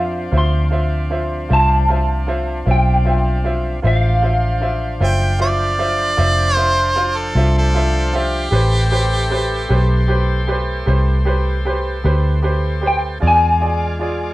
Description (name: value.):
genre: blues.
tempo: 51 BPM (dotted quarters).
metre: 12/8.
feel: straight.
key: unclear.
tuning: A4 = 443 Hz.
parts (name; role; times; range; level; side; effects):
electric guitar through a small old amp; melody; 0.0-5.4, 12.9-14.3 s; F5 to C6; -19 LUFS; left 1 dB; ensemble chorus.
clear concert grand piano; accompaniment; 0.0-14.3 s; F4 to F5; -22 LUFS; right 1 dB; none.
bright tonewheel organ; sustained chords; 0.0-14.3 s; F3 to D5; -27 LUFS; left 1 dB; slow rotary speaker, overdrive.
vintage muted fingered electric bass; bass; 0.0-14.3 s; F1 to F2; -17 LUFS; equal; transformer saturation.
bright harmonica; second line; 5.0-10.5 s; G4 to G5; -19 LUFS; right 2 dB; none.
room: light reverb.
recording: worn, warbling old tape, cassette tape, warbly pitch drift, faint mains hum.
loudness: -14 LUFS.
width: side -18 dB against mid.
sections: 0.0-14.3 A section.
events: none.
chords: 0.0 Dm7; 8.5 Am7; 13.2 E7b9.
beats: 0.33 1.50 2.67 | 3.84 5.01 6.18 7.35 | 8.53 9.70 10.87 12.05 | 13.22.